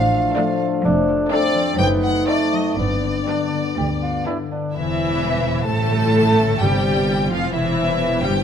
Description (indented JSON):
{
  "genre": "classical",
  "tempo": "119-131 BPM",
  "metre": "4/4",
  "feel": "rubato",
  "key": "C major",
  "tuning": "A4 = 444 Hz",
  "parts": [
    { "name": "rich chamber violin section", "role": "melody", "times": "0.0-8.4 s", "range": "D5 to A5", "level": "-24 LUFS", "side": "left 2 dB", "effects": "none" },
    { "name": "warm bassoon", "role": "accompaniment", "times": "0.0-4.8 s", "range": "A3 to G4", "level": "-24 LUFS", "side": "right 3 dB", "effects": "none" },
    { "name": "mellow French horn section", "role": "sustained chords", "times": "0.0-4.5 s", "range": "A3 to D#4", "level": "-23 LUFS", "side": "left 2 dB", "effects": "none" },
    { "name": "concert harp", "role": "arpeggios", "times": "0.0-8.4 s", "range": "F2 to F4", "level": "-26 LUFS", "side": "left 9 dB", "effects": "none" },
    { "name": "rich symphonic cello section", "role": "bass", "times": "0.0-8.4 s", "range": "D2 to A2", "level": "-24 LUFS", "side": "right 3 dB", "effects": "none" },
    { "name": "warm symphonic double bass section", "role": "bass", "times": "0.0-8.4 s", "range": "E1 to D2", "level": "-24 LUFS", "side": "right 3 dB", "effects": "none" },
    { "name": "warm symphonic violin section", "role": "second line", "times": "0.4-8.4 s", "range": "E4 to D5", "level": "-26 LUFS", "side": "left 2 dB", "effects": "none" },
    { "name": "rich symphonic viola section", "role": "accompaniment", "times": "0.4-8.3 s", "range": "E3 to D#4", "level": "-24 LUFS", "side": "equal", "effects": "none" },
    { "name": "timpani", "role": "percussion", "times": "6.6-7.3 s", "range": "C3", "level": "-28 LUFS", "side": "right 1 dB", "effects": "none" }
  ],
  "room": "moderate scoring stage reverb, RT60 1.6 s",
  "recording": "close, detailed microphones",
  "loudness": "-17 LUFS",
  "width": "side -8 dB against mid",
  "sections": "0.0-4.8 A section; 4.8-8.4 B section",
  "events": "none",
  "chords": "0.0 Dm/A; 0.8 Dm/F; 1.8 F#dim7; 2.8 G; 4.8 C/E; 5.7 G7; 6.6 C",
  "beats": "0.37 | 0.85 1.32 1.79 2.28 | 2.78 3.27 3.77 4.27 | 4.75 5.22 5.69 6.16 | 6.62 7.08 7.54 8.00"
}